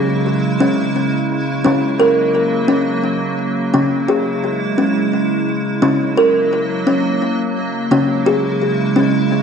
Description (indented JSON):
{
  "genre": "world meditative, meditative tuned percussion",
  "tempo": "58 BPM (dotted quarters)",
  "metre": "6/8",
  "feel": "straight",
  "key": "C# kumoi",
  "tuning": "A4 = 437 Hz",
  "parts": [
    { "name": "icy glass pad", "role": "sustained chords", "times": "0.0-9.4 s", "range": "C#3 to E4", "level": "-18 LUFS", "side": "right 2 dB", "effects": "chorus, built-in reverb" },
    { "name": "kalimba", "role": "arpeggios", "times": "0.0-9.4 s", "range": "C#3 to A#4", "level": "-16 LUFS", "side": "left 1 dB", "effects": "ping-pong delay" }
  ],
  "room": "wet concert hall reverb, RT60 1.9 s, small room reverb",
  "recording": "worn, warbling old tape, cassette tape, warbly pitch drift",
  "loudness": "-14 LUFS",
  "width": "side -6 dB against mid",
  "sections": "0.0-9.4 A section",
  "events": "none",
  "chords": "0.0 C#m; 1.6 F#/C#; 3.7 C#m; 5.8 F#/C#; 7.9 C#m"
}